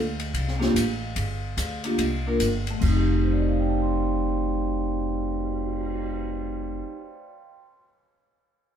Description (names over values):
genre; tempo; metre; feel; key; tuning
jazz, small-group swing and bop; 145 BPM; 4/4; swing 64% on 8ths; F mixolydian; A4 = 440 Hz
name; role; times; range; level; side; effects
upright bass; bass; 0.0-6.8 s; F1 to D2; -28 LUFS; equal; none
open jazz drum kit; drums; 0.2-6.0 s; crash cymbal, cymbal swell, hi-hat, kick drum, ride cymbal, snare drum; -31 LUFS; left 1 dB; none
vibraphone with medium mallets; accompaniment; 0.6-7.8 s; A3 to C6; -26 LUFS; equal; none
room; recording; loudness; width
moderate studio reverb, RT60 0.7 s; band playing live in one room; -23 LUFS; side -8 dB against mid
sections
0.0-2.8 A section; 2.8-6.1 B section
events
none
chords
0.3 C7sus4; 1.2 Gm7; 2.0 C7sus4; 2.8 F9